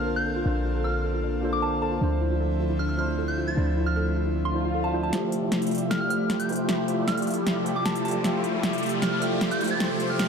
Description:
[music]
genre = future bass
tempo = 154 BPM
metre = 4/4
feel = half-time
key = F major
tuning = A4 = 443 Hz
[part]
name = tine electric piano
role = accompaniment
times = 0.0-10.3 s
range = F3 to E5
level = -29 LUFS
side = right 2 dB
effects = lush chorus, ping-pong delay
[part]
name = airy breathy pad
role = sustained chords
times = 0.0-10.3 s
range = C3 to E5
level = -33 LUFS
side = left 2 dB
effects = chorus
[part]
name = warm 808-style bass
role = bass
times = 0.0-5.1 s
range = Bb1 to D2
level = -28 LUFS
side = equal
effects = none
[part]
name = soft round pluck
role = arpeggios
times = 0.1-5.1 s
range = D4 to Bb4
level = -34 LUFS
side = equal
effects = wide subtle chorus, ping-pong delay
[part]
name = soft synth bell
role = melody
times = 0.2-10.3 s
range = A5 to A6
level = -32 LUFS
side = right 1 dB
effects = chorus, phaser, ping-pong delay
[part]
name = swell and riser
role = sound effects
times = 4.5-10.3 s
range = none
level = -36 LUFS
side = left 3 dB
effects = none
[part]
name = supersaw chords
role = riff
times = 5.1-10.3 s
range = A3 to D5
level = -29 LUFS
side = left 2 dB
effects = wide subtle chorus, low-pass filter
[part]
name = big-room dance drum kit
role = drums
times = 5.1-10.3 s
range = hi-hat, snare drum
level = -28 LUFS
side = equal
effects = overdrive
[sound]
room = wet lush hall reverb, RT60 1.7 s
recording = dreamy mix soaked in reverb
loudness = -23 LUFS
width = side -6 dB against mid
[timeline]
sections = 0.0-5.1 A section; 5.1-10.3 B section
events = swell 4.5-5.1; build-up 5.1-10.3; drum fill 5.1-10.3; riser 5.1-10.3; filter sweep on supersaw synth 5.1-10.3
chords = 0.0 Bbmaj9; 2.0 Dm9; 5.1 Fmaj9

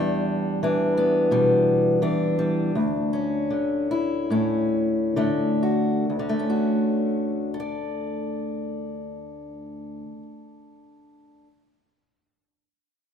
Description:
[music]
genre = folk, solo fingerstyle acoustic guitar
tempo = 62-91 BPM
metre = 4/4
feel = straight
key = D major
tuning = A4 = 440 Hz
[part]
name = fingerpicked steel-string acoustic guitar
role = solo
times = 0.0-11.5 s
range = D2 to D5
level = -22 LUFS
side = left 1 dB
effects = none
[sound]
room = wet concert hall reverb, RT60 1.9 s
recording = minimal, uncompressed stereo recording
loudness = -21 LUFS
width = side -7 dB against mid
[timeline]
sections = 0.0-2.7 A section; 2.7-6.1 B section; 6.1-9.9 C section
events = slowing down 0.0-6.1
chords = 0.0 Em7; 2.7 Dmaj7

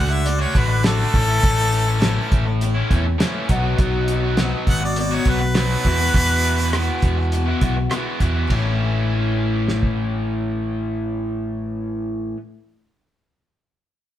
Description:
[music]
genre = folk rock and heartland rock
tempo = 102 BPM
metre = 4/4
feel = straight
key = A major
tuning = A4 = 442 Hz
[part]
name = bright harmonica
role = melody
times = 0.0-7.3 s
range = A4 to F#5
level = -22 LUFS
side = equal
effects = none
[part]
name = picked twelve-string acoustic guitar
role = accompaniment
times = 0.0-12.4 s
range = E2 to A4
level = -29 LUFS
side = left 4 dB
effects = none
[part]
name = raw garage guitar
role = riff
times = 0.0-12.4 s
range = E2 to F#4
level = -24 LUFS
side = right 1 dB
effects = overdrive
[part]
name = fingered electric bass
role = bass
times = 0.0-12.3 s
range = G#1 to E2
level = -22 LUFS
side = left 1 dB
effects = none
[part]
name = cloth-damped thuddy drum kit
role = drums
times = 0.3-10.0 s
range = hi-hat, kick drum, ride cymbal, rim click, snare drum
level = -21 LUFS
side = equal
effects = none
[sound]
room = wet studio reverb, RT60 0.7 s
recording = band playing live in one room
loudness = -17 LUFS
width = side -12 dB against mid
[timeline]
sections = 0.0-8.5 A section; 8.5-10.9 B section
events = harmonica solo 0.0-8.5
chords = 0.0 D; 1.1 A; 3.5 B; 5.8 Esus2; 8.5 A

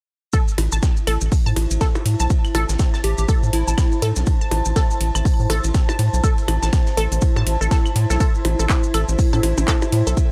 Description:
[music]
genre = minimal techno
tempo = 122 BPM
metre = 4/4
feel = swing 59% on 16ths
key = A minor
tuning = A4 = 441 Hz
[part]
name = resonant blip pluck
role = riff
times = 0.3-10.1 s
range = A4 to A5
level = -29 LUFS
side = equal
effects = phaser, sidechain pumping, analog delay
[part]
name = breakbeat sampler-style drum kit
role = drums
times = 0.3-10.3 s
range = hi-hat, ride cymbal, snare drum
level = -39 LUFS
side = equal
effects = overdrive, high-pass filter on cymbals, high-pass filter on snare, high-pass filter on hats, high-pass filter on room
[part]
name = electronic kick drum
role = drums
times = 0.3-10.3 s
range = none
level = -20 LUFS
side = equal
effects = none
[part]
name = maracas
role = percussion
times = 0.3-10.3 s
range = none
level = -33 LUFS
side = equal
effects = none
[part]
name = granular cloud pad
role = texture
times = 0.8-10.3 s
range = E4 to A5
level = -30 LUFS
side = equal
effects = built-in reverb, sidechain pumping
[part]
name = rubbery square bass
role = bass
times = 0.6-10.1 s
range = A1 to A2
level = -22 LUFS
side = equal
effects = sidechain pumping
[part]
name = booming analog drum machine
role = drums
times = 0.6-10.0 s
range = handclaps, hi-hat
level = -29 LUFS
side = equal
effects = none
[part]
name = percussion blips and claves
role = percussion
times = 0.6-9.9 s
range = none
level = -30 LUFS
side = equal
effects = analog delay
[part]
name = plucky unison lead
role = melody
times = 3.0-4.2 s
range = E4 to G4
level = -29 LUFS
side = equal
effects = phaser, analog delay
[sound]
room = light reverb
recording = dry, gritty hardware recording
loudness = -19 LUFS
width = mono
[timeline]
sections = 0.3-10.3 A section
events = none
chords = 0.3 Am

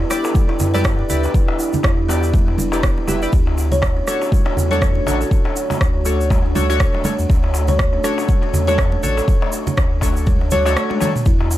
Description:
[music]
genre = afro house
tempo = 121 BPM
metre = 4/4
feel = swing 57% on 16ths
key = unclear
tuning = A4 = 440 Hz
[part]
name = dark analog pad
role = sustained chords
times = 0.0-11.6 s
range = A3 to C#5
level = -28 LUFS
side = right 1 dB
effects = chorus, phaser, sidechain pumping
[part]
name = buzzing kalimba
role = arpeggios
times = 0.0-11.4 s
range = A3 to D5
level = -24 LUFS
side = right 1 dB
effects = sidechain pumping, digital delay
[part]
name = warm sub bass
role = bass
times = 0.0-11.6 s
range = E1 to F#2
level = -20 LUFS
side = equal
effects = sidechain pumping
[part]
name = darbuka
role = percussion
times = 0.0-11.6 s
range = none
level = -30 LUFS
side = left 4 dB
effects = none
[part]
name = warm analog keys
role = stabs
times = 0.1-11.1 s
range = D4 to E5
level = -24 LUFS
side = left 2 dB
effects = chorus, sidechain pumping, digital delay
[part]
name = afro-pop drum kit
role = drums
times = 0.1-11.2 s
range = rim click, toms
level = -24 LUFS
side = right 1 dB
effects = none
[part]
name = congas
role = percussion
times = 0.1-11.4 s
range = none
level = -26 LUFS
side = right 3 dB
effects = none
[part]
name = tube shaker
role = percussion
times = 0.1-11.6 s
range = none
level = -31 LUFS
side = right 2 dB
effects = none
[part]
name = electronic kick drum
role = drums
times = 0.4-11.4 s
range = none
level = -17 LUFS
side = equal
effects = none
[sound]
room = small room ambience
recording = none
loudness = -15 LUFS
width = side -14 dB against mid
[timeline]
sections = 0.0-11.6 A section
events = break 10.8-11.3; drum fill 10.9-11.3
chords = 0.0 Em7; 3.3 Dmaj7

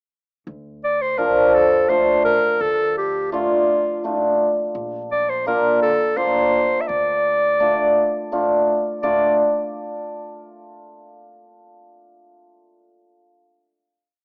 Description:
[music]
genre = klezmer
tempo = 84 BPM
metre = 3/4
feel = straight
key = D minor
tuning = A4 = 441 Hz
[part]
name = upright bass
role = bass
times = 0.5-9.4 s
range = Bb1 to D2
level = -43 LUFS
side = equal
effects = none
[part]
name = bright clarinet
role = melody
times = 0.8-9.4 s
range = F4 to E5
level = -22 LUFS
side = equal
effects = none
[part]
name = cimbalom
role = accompaniment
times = 1.2-9.4 s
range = F3 to F4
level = -21 LUFS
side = equal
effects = none
[sound]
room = light reverb, small room ambience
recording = rough home demo mix, small speaker sound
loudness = -19 LUFS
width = mono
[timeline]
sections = 0.5-9.0 A section; 9.0-11.2 final chord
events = none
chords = 0.5 Dm; 4.8 Bb; 6.9 Dm

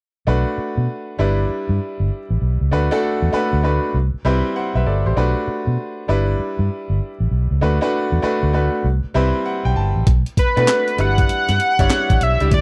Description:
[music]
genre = R&B, new jack swing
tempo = 98 BPM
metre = 4/4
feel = swing 64% on 16ths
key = unclear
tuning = A4 = 440 Hz
[part]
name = bright grand piano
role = accompaniment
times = 0.3-12.5 s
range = G3 to A5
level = -24 LUFS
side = equal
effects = none
[part]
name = vintage muted fingered electric bass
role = bass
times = 0.3-12.6 s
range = G1 to B2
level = -21 LUFS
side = equal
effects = none
[part]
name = breakbeat sampler-style drum kit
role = drums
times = 10.1-12.6 s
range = handclaps, hi-hat, kick drum, snare drum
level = -20 LUFS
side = equal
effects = none
[part]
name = octave-doubled lead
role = melody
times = 10.4-12.6 s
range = B4 to F#5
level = -20 LUFS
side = equal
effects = chorus
[sound]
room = little or no reverb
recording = dry, close 1970s-style studio recording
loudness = -19 LUFS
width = mono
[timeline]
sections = 0.3-10.1 A section; 10.1-12.6 B section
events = grand piano fill 8.8-10.1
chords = 0.3 Bm7; 1.2 G6; 2.7 D6; 3.9 Cmaj7; 5.2 Bm7; 6.1 G6; 7.6 D6; 8.8 Cmaj7; 10.1 Bm7; 11.0 G6

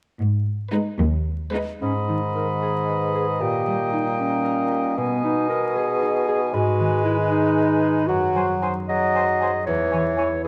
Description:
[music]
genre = cinematic, playful, whimsical film cue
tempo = 77 BPM (dotted quarters)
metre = 6/8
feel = straight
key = G# minor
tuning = A4 = 440 Hz
[part]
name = rich studio cello section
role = bass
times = 0.2-1.7 s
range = D#2 to G#2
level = -24 LUFS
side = equal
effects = none
[part]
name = rich studio violin section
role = melody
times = 0.7-1.7 s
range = B4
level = -36 LUFS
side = equal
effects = none
[part]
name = rich symphonic violin section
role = second line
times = 0.7-1.8 s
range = D#4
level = -34 LUFS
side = equal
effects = none
[part]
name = rich studio viola section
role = accompaniment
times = 0.7-1.7 s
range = G#3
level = -29 LUFS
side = equal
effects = none
[part]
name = concert flute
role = second line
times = 1.8-10.2 s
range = G5 to B5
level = -33 LUFS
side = equal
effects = none
[part]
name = dark clarinet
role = second line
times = 1.8-10.5 s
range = B3 to D#5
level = -26 LUFS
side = equal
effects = none
[part]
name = mellow cor anglais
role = second line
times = 1.8-10.3 s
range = B4 to D#5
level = -32 LUFS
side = equal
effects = none
[part]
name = warm bassoon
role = accompaniment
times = 1.8-10.5 s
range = G#2 to G#3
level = -26 LUFS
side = equal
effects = none
[part]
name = concert harp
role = arpeggios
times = 1.8-10.5 s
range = E2 to B#4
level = -29 LUFS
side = equal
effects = none
[sound]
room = moderate scoring stage reverb, RT60 1.6 s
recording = close, detailed microphones, vinyl crackle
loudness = -22 LUFS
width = mono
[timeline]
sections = 0.2-1.8 A section; 1.8-10.5 B section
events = none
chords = 0.2 G#m; 3.4 D#7/A#; 5.0 G#m/B; 6.5 G#m; 8.1 G#7/F#; 9.7 C#m/E

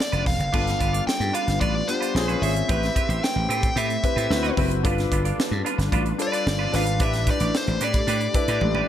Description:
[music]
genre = polished 1980s jazz-funk pop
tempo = 111 BPM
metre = 4/4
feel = straight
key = unclear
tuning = A4 = 440 Hz
[part]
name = nasal lead guitar with a parked wah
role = melody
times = 0.0-8.9 s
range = C5 to G5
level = -27 LUFS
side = left 1 dB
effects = overdrive
[part]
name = clear grand piano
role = accompaniment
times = 0.0-8.9 s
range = B3 to D5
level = -29 LUFS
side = left 4 dB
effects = analog chorus
[part]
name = semi-hollow electric guitar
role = riff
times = 0.0-8.9 s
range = C4 to D5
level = -31 LUFS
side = right 5 dB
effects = wide subtle chorus
[part]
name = crisp fusion drum kit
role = drums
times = 0.0-8.9 s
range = crash cymbal, hi-hat, kick drum, snare drum, toms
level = -26 LUFS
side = right 1 dB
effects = gated reverb
[part]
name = slap bass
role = bass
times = 0.1-8.8 s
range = E1 to A2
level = -25 LUFS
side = equal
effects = none
[part]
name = soft string machine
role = sustained chords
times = 1.0-8.9 s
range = D3 to B4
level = -33 LUFS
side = left 1 dB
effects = phaser, ensemble chorus
[sound]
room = studio reverb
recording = none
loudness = -20 LUFS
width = side -10 dB against mid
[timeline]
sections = 0.5-8.9 A section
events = drum fill 8.6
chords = 0.0 G7 (rootless); 0.5 G7; 2.2 Bbm9; 2.7 Am9; 4.3 D13; 4.8 G7; 7.0 A9sus4

